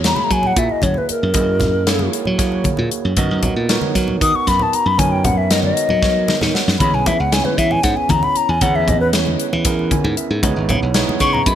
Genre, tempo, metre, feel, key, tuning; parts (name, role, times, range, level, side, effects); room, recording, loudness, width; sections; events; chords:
electric jazz fusion; 231 BPM (eighths); 7/8; straight; A4 = 441 Hz
overdriven tine electric piano; accompaniment; 0.0-11.6 s; A#3 to G#5; -23 LUFS; right 6 dB; analog chorus
glassy slap bass; bass; 0.0-11.6 s; G#1 to F#3; -19 LUFS; equal
modern studio drum kit; drums; 0.0-11.6 s; hi-hat, kick drum, snare drum; -20 LUFS; left 1 dB; gated reverb
congas; percussion; 0.0-11.5 s; -24 LUFS; left 2 dB
mellow hollow silver concert flute; melody; 0.1-11.6 s; A#4 to D#6; -18 LUFS; left 3 dB; ping-pong delay
light reverb, studio ambience; bright 1980s-style digital production; -14 LUFS; side -10 dB against mid
0.0-11.6 A section
flute solo 0.0-11.6; drum fill 6.0-6.8; tine electric piano fill 6.0-6.8, 9.7-10.4
0.0 F#9; 3.2 Bmaj7/F#; 6.8 E6; 10.4 C#m9